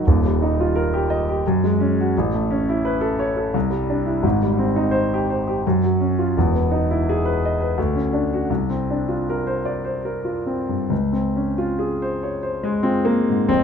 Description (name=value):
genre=classical, impressionist solo piano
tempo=66-88 BPM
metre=3/4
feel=rubato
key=unclear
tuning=A4 = 440 Hz
part: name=warm concert grand piano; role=solo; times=0.0-13.6 s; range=Eb1 to Eb5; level=-18 LUFS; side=equal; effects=none
room=light reverb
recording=close, detailed microphones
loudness=-18 LUFS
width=side -7 dB against mid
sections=0.0-13.5 A section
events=none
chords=0.0 Ebadd9; 1.4 Gbsus2; 2.1 Aadd9; 3.5 Cadd9; 4.2 Abmaj7; 5.6 Gb5; 6.4 Emaj7; 7.8 Dmaj7; 8.5 C9sus4; 10.9 Dbmaj7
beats=| 0.02 0.71 1.43 | 2.14 2.84 3.55 | 4.24 4.94 5.64 | 6.36 7.07 7.77 | 8.49 9.25 10.05 | 10.90 11.80 12.64 | 13.48